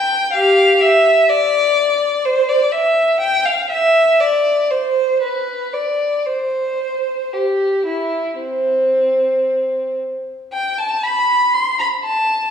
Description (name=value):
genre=classical, baroque-style suite movement for unaccompanied violin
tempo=55-63 BPM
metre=4/4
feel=rubato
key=C major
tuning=A4 = 440 Hz
part: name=rich violin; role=solo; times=0.0-12.5 s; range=C4 to C6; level=-14 LUFS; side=equal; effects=none
room=wet recital hall reverb, RT60 1.5 s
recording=heard from further back in the room, studio reverb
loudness=-14 LUFS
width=side -8 dB against mid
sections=0.0-10.5 A section; 10.5-12.5 B section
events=none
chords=none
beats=0.34 1.30 | 2.26 3.22 4.21 5.22 | 6.26 7.34 8.41 9.46 | 10.53 11.55